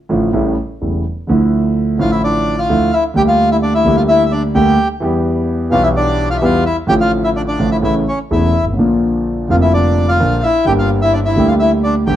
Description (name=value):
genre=tango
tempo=128 BPM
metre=4/4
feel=rubato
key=D minor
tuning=A4 = 440 Hz
part: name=dark concert grand piano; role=accompaniment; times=0.1-12.2 s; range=E1 to G4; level=-14 LUFS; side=equal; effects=none
part: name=bandoneon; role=melody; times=2.0-12.2 s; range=C#4 to G5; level=-15 LUFS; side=left 1 dB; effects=plate reverb
room=moderate studio reverb, RT60 0.8 s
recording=dark, warm production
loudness=-12 LUFS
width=side -11 dB against mid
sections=0.0-1.3 A section; 1.3-12.2 B section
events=none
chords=0.3 A7; 1.3 Dmadd9; 3.2 Gm/D; 5.0 Em; 6.9 Dm/A; 7.8 A; 8.8 Bb; 10.7 Gm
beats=0.33 0.81 | 1.29 1.76 2.23 2.69 | 3.16 3.63 4.09 4.56 | 5.02 5.49 5.96 6.42 | 6.89 7.36 7.83 8.31 | 8.79 9.26 9.73 10.20 | 10.67 11.14 11.60 12.07